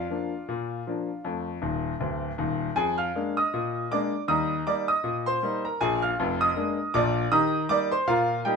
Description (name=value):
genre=ragtime piano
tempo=79 BPM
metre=2/4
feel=swing 56% on 16ths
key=Eb major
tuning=A4 = 441 Hz
part: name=clear grand piano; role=solo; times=0.0-8.6 s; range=D1 to F6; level=-24 LUFS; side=equal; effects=none
room=moderate studio reverb, RT60 0.8 s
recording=minimal, uncompressed stereo recording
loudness=-24 LUFS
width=side -5 dB against mid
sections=0.0-8.6 A section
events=grand piano fill 1.6-2.8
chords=0.0 Bb/F; 1.2 F; 2.8 Bb7/F; 4.3 Eb; 5.8 Bb7; 7.3 Eb